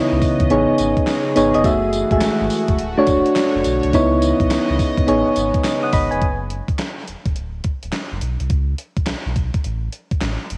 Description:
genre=R&B, new jack swing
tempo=105 BPM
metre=4/4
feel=swing 64% on 16ths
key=unclear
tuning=A4 = 439 Hz
part: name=soft electric-piano-like synth keys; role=accompaniment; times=0.0-6.4 s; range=G#3 to D#6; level=-19 LUFS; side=equal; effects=chorus, cassette tape
part: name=phased analog pad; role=sustained chords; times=0.0-6.2 s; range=C#3 to D#5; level=-28 LUFS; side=equal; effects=phaser, chorus, cassette tape
part: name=sub bass with octave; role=bass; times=0.1-10.6 s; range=D1 to C#2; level=-26 LUFS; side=equal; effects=none
part: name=gated 80s digital drum machine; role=drums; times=0.2-10.6 s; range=handclaps, hi-hat, kick drum, snare drum, tambourine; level=-24 LUFS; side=equal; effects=gated reverb, gated reverb snare
room=light reverb, digital ambience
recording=home recording on cassette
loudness=-19 LUFS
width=mono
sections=0.0-6.2 A section; 6.2-10.6 B section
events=none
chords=0.0 C#m9; 0.5 Amaj9#11; 1.6 F#m9; 2.8 Dmaj7; 3.9 C#m9; 5.1 Amaj9#11; 6.2 Eadd9; 7.4 D; 8.5 Bsus2; 9.6 F

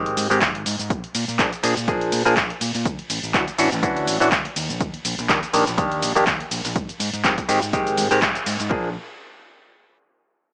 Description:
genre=filtered disco house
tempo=123 BPM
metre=4/4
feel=swing 55% on 16ths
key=Bb mixolydian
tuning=A4 = 440 Hz
part: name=bright clav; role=accompaniment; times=0.0-8.9 s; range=Eb3 to Ab4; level=-23 LUFS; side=equal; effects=phaser, vintage 12-bit sampler grit, sidechain pumping
part: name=overdriven fingered electric bass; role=bass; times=0.0-8.9 s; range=Ab1 to Bb2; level=-31 LUFS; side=equal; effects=tube saturation, sidechain pumping
part: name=punchy analog drum machine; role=drums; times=0.1-8.7 s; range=handclaps, hi-hat, ride cymbal, shaker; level=-26 LUFS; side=equal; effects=sidechain pumping on hats, sidechain pumping on perc, sidechain pumping on cymbals
part: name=electronic kick drum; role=drums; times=0.4-8.8 s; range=none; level=-29 LUFS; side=equal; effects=none
room=light reverb, digital ambience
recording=dry, gritty hardware recording, small speaker sound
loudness=-21 LUFS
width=mono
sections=0.0-8.7 A section; 8.7-10.5 B section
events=drop 0.0-8.7; band accent 8.2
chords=0.0 Abmaj7; 0.9 Bb7; 2.9 Dmaj9; 4.6 Ebmaj7; 6.8 Abmaj7; 8.7 Bb7

